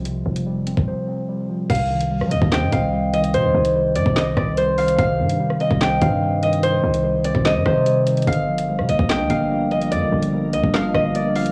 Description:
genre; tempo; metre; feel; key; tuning
hip hop, drill; 146 BPM; 4/4; half-time; C minor; A4 = 441 Hz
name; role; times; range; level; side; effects
mellow tine electric piano; accompaniment; 0.0-11.5 s; C3 to C5; -25 LUFS; equal; cassette tape
hard-hitting 808-style bass; bass; 0.0-11.5 s; F1 to G3; -26 LUFS; equal; none
drill drum kit; drums; 0.1-11.5 s; crash cymbal, handclaps, hi-hat, kick drum, rim click, snare drum; -26 LUFS; equal; overdrive
concert harp; melody; 1.7-11.5 s; C5 to G5; -23 LUFS; equal; cassette tape, tape echo
glassy FM pad; sustained chords; 8.8-11.5 s; G3 to Bb4; -30 LUFS; equal; ensemble chorus, built-in reverb, cassette tape
room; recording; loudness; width
digital ambience; home recording on cassette, small room ambience; -20 LUFS; mono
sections
0.0-1.7 A section; 1.7-11.5 B section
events
break 0.0-1.7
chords
0.0 Fsus2; 1.7 Cm; 8.3 Gm7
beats
| 0.05 0.47 0.88 1.29 | 1.70 2.11 2.52 2.93 | 3.34 3.75 4.16 4.58 | 4.99 5.40 5.81 6.22 | 6.63 7.04 7.45 7.86 | 8.27 8.69 9.10 9.51 | 9.92 10.33 10.74 11.15

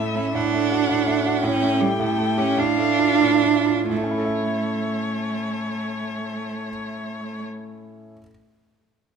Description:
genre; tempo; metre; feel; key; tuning
quick classical-period movement for piano trio; 82-113 BPM (dotted quarters); 6/8; rubato; A major; A4 = 439 Hz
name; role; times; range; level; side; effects
warm violin; melody; 0.0-7.4 s; C#5 to G5; -28 LUFS; left 8 dB; none
rich cello; second line; 0.0-7.4 s; G3 to D4; -22 LUFS; right 5 dB; none
bright concert grand piano; accompaniment; 0.0-8.3 s; A2 to E5; -26 LUFS; right 1 dB; none
room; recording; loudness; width
moderate recital hall reverb, RT60 1.6 s; close, detailed microphones; -20 LUFS; side -6 dB against mid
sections
0.0-3.9 A section; 3.9-6.7 B section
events
slowing down 0.9-3.9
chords
0.4 D/A; 1.4 A7; 2.6 Dm/A; 3.9 A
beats
| 0.35 0.90 | 1.43 1.99 | 2.58 3.21 | 3.91 4.59 | 5.29 5.98

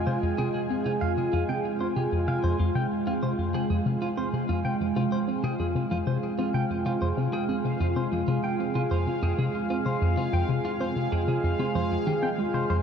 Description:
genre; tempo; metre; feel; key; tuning
ambient, sequencer-driven space music; 95 BPM; 4/4; straight; F minor; A4 = 440 Hz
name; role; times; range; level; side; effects
sweeping resonant pad; sustained chords; 0.0-12.8 s; Ab3 to Ab5; -28 LUFS; right 1 dB; chorus, shimmer reverb
tight sequenced synth; riff; 0.0-12.8 s; F2 to C4; -28 LUFS; left 1 dB; chorus, ping-pong delay
bubbling stepped-filter texture; texture; 0.0-12.8 s; F5 to Ab5; -39 LUFS; left 1 dB; chorus, built-in reverb, shimmer reverb
clean electric guitar; arpeggios; 0.1-12.8 s; F4 to G5; -34 LUFS; moving between left 3 dB and right 4 dB; auto-pan, ping-pong delay, shimmer reverb
room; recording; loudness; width
wet huge ambient reverb, RT60 8.2 s; dark, warm production; -24 LUFS; side -7 dB against mid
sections
0.0-12.8 A section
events
none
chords
0.0 Fm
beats
| 0.07 0.70 1.33 1.96 | 2.60 3.23 3.86 4.49 | 5.12 5.75 6.38 7.02 | 7.65 8.28 8.91 9.54 | 10.17 10.80 11.44 12.07 | 12.70

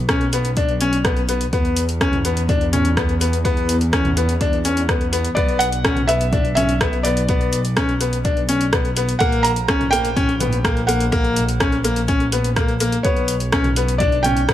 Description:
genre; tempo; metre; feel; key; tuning
piano and strings electronica; 125 BPM; 4/4; straight; unclear; A4 = 440 Hz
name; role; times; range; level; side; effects
rich studio double bass section; bass; 0.0-14.5 s; A#1 to E2; -22 LUFS; right 1 dB; sidechain pumping
bright upright piano; riff; 0.1-14.5 s; A#3 to D4; -21 LUFS; left 3 dB; digital delay
deep house drum kit; drums; 0.1-14.5 s; hi-hat, rim click, toms; -24 LUFS; right 1 dB; none
electronic kick drum; drums; 0.1-14.5 s; none; -22 LUFS; equal; none
felt-muted upright piano; melody; 5.3-14.5 s; C#5 to A#5; -22 LUFS; right 2 dB; none
room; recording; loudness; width
light reverb, small room ambience; none; -16 LUFS; side -12 dB against mid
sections
0.0-14.5 A section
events
none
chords
0.0 N.C.; 1.5 E5; 5.4 Bm; 9.2 F#/A#; 13.0 N.C.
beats
0.09 0.57 1.05 | 1.53 2.01 2.49 2.97 | 3.45 3.93 4.41 4.89 | 5.37 5.85 6.33 6.81 | 7.29 7.77 8.25 8.73 | 9.21 9.69 10.17 10.65 | 11.13 11.61 12.09 12.57 | 13.05 13.53 14.01 14.49

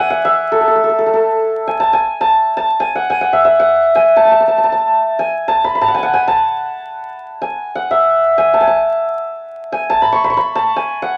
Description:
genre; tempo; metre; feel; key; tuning
Persian modal ensemble; free time; none; none; A dastgah mahur; A4 = 441 Hz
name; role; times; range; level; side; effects
santur; solo; 0.0-11.2 s; A4 to C#6; -14 LUFS; equal; none
room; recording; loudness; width
wet studio reverb, RT60 0.5 s; vinyl crackle; -14 LUFS; mono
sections
0.0-1.5 A section; 1.5-11.2 A section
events
none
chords
none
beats
free time

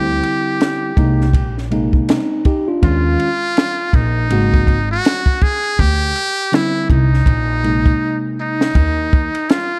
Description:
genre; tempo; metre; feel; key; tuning
hip hop, jazz-hop; 81 BPM; 4/4; swing 60% on 16ths; unclear; A4 = 439 Hz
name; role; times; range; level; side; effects
trumpet with metal mute; melody; 0.0-9.8 s; Eb4 to Ab4; -22 LUFS; equal; none
tine electric piano; accompaniment; 0.0-8.7 s; C3 to G4; -22 LUFS; equal; none
upright bass; bass; 0.0-9.3 s; Ab1 to Eb2; -20 LUFS; equal; none
compact cocktail drum kit; drums; 0.2-9.7 s; hi-hat, kick drum, ride cymbal, snare drum; -18 LUFS; equal; none
room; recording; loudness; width
light reverb; dark, warm production; -16 LUFS; mono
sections
0.0-8.8 A section; 8.8-9.8 B section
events
drum fill 8.0-8.8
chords
0.0 D9sus4; 1.3 Bb9sus4; 2.8 Eb9sus4; 4.3 Ab9sus4; 5.8 D9sus4; 7.3 Bb9sus4; 8.8 Ebsus2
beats
0.60 1.35 2.09 | 2.83 3.57 4.31 5.05 | 5.79 6.53 7.27 8.01 | 8.75 9.49

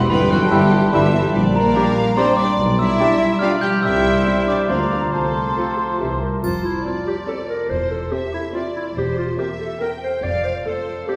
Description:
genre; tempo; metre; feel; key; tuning
cinematic, playful, whimsical film cue; 143 BPM; 3/4; straight; F major; A4 = 441 Hz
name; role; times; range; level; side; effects
glockenspiel with rubber mallets; melody; 0.0-6.0 s; G5 to G6; -26 LUFS; equal; none
rich studio violin section; melody; 0.0-11.2 s; C5 to A5; -33 LUFS; equal; none
rich studio viola section; accompaniment; 0.0-11.2 s; E3 to C5; -30 LUFS; equal; none
concert harp; arpeggios; 0.0-11.2 s; E2 to Bb5; -28 LUFS; equal; none
mellow tuba; bass; 0.0-6.4 s; G1 to D2; -27 LUFS; equal; none
rich studio double bass section; bass; 0.0-10.6 s; E1 to D2; -29 LUFS; equal; none
warm studio violin section; second line; 0.1-11.2 s; F#4 to G5; -28 LUFS; equal; none
rich studio cello section; bass; 0.1-10.6 s; E2 to G4; -29 LUFS; equal; none
bright large flute ensemble; second line; 0.5-6.2 s; G5 to C6; -33 LUFS; equal; none
clear oboe; second line; 0.5-6.2 s; C5 to E5; -32 LUFS; equal; none
warm clarinet; second line; 0.5-11.2 s; D4 to D5; -28 LUFS; equal; none
mellow bassoon; accompaniment; 0.5-6.1 s; E3 to G3; -30 LUFS; equal; none
warm French horn section; sustained chords; 0.5-6.2 s; E3 to E4; -32 LUFS; equal; none
triangle; percussion; 6.4-7.2 s; none; -46 LUFS; equal; none
room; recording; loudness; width
wet scoring stage reverb, RT60 2.0 s; heard from further back in the room; -19 LUFS; mono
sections
0.0-6.4 A section; 6.4-11.2 B section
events
none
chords
0.1 Em/G; 1.3 Gm/Bb; 2.6 G7/B; 3.8 C; 4.7 Bb/D; 5.1 F/C; 6.0 C; 6.4 F; 7.7 C/E; 9.0 C7/E; 10.2 F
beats
| 0.10 0.51 0.92 | 1.34 1.75 2.17 | 2.58 3.00 3.41 | 3.83 4.26 4.68 | 5.12 5.57 6.01 | 6.44 6.87 7.29 | 7.71 8.13 8.55 | 8.97 9.39 9.82 | 10.24 10.65 11.07

